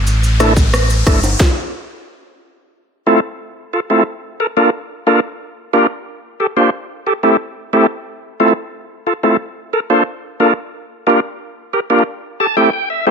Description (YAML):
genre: dancehall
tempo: 90 BPM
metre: 4/4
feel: straight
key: unclear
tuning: A4 = 440 Hz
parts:
  - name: sub bass with octave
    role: bass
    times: 0.0-1.4 s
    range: G1 to A1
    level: -15 LUFS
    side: equal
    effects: none
  - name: riser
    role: sound effects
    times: 0.0-1.4 s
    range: none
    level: -23 LUFS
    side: left 1 dB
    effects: none
  - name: island pop drum kit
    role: drums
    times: 0.1-1.6 s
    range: hi-hat, kick drum, rim click, shaker, snare drum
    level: -15 LUFS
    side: equal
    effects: overdrive
  - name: maracas and timbales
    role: percussion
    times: 0.1-1.4 s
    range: none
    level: -27 LUFS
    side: left 1 dB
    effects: none
  - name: bright tonewheel organ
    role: accompaniment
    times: 0.4-13.1 s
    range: A3 to A5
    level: -13 LUFS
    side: equal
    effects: overdrive, fast rotary speaker, sidechain pumping
room: light reverb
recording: none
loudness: -13 LUFS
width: side -5 dB against mid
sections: 0.0-2.7 A section; 2.7-13.1 B section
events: riser 0.0-2.7; stop 1.4-2.7; tonewheel organ fill 12.1-13.1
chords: 0.1 Asus4; 1.4 N.C.; 2.7 Fmaj7; 4.1 Bbmaj7; 5.4 Gm7; 6.7 Am7; 8.1 Fmaj7; 9.4 Bbmaj7; 10.7 Gm7; 12.1 Am7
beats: | 0.07 0.73 1.40 2.07 | 2.73 3.40 4.07 4.73 | 5.40 6.07 6.73 7.40 | 8.07 8.73 9.40 10.07 | 10.73 11.40 12.07 12.73